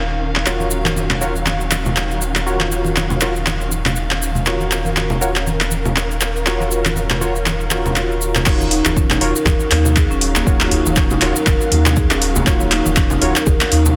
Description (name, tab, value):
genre	afro house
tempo	120 BPM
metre	4/4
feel	swing 57% on 16ths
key	Eb minor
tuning	A4 = 441 Hz
part	dark studio string section	sustained chords	0.0-14.0 s	Eb3 to F5	-28 LUFS	equal	sidechain pumping
part	warm sub bass	bass	0.0-14.0 s	Eb1 to Eb2	-24 LUFS	equal	sidechain pumping
part	deep house drum kit	drums	0.4-13.8 s	crash cymbal, handclaps, hi-hat	-22 LUFS	equal	low-pass filter on snare, studio reverb, low-pass filter on cymbals, low-pass filter on hats
part	warm analog keys	stabs	0.5-13.3 s	F4 to Db5	-26 LUFS	equal	chorus, sidechain pumping, tape echo
part	cabasa	percussion	0.5-13.9 s	none	-29 LUFS	equal	none
part	congas	percussion	0.6-13.9 s	none	-27 LUFS	equal	none
part	marimba with medium hard mallets	arpeggios	8.5-13.8 s	Bb3 to Bb4	-23 LUFS	equal	sidechain pumping, tape echo
part	electronic kick drum	drums	8.5-13.6 s	none	-20 LUFS	equal	studio reverb
part	djembe	percussion	8.6-13.9 s	none	-29 LUFS	equal	none
room	moderate lush hall reverb, RT60 2.1 s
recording	dense, heavily limited modern master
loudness	-17 LUFS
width	mono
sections	0.0-8.5 A section; 8.5-14.0 B section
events	filter sweep on string section 0.0-8.5; drop 8.5-14.0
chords	0.0 Ebm9